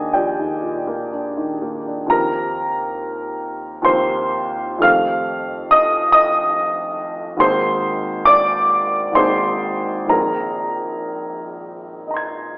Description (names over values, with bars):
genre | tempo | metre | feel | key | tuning
classical, impressionist solo piano | 67 BPM | 3/4 | uneven beats, rubato | Eb major | A4 = 440 Hz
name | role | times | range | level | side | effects
warm grand piano | solo | 0.0-12.6 s | Ab1 to Ab6 | -16 LUFS | equal | none
room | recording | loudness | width
wet recital hall reverb, RT60 1.4 s | heard from further back in the room, telephone sound | -16 LUFS | side -26 dB against mid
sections
0.0-2.1 A section; 2.1-12.6 A section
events
none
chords
0.0 Ebmaj9; 2.1 Eb69; 4.8 F9; 7.4 Abadd9; 10.1 Bb9sus4